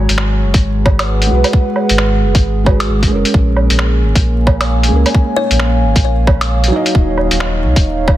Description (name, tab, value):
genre	future garage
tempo	133 BPM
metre	4/4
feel	swing 60% on 16ths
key	unclear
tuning	A4 = 440 Hz
part	felt-muted upright piano	accompaniment	0.0-8.2 s	Gb3 to Eb5	-20 LUFS	right 2 dB	sidechain pumping, tape echo
part	dark analog pad	sustained chords	0.0-8.2 s	Gb3 to Bb5	-19 LUFS	right 1 dB	chorus, sidechain pumping
part	warm sub bass	bass	0.0-8.2 s	Eb1 to Db2	-14 LUFS	equal	tube saturation
part	lo-fi sampler-style drum kit	drums	0.1-8.2 s	finger snaps, hi-hat, woodblock	-18 LUFS	right 1 dB	soft clipping on snare
part	electronic kick drum	drums	0.5-8.2 s	none	-12 LUFS	equal	none
part	kalimba	melody	5.4-5.8 s	Db5	-22 LUFS	left 4 dB	ping-pong delay
room	light reverb, digital ambience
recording	dense, heavily limited modern master, vinyl crackle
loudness	-11 LUFS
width	side -14 dB against mid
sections	0.0-8.2 A section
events	none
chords	0.0 Abm7; 3.3 Bbm7; 6.9 Ebm7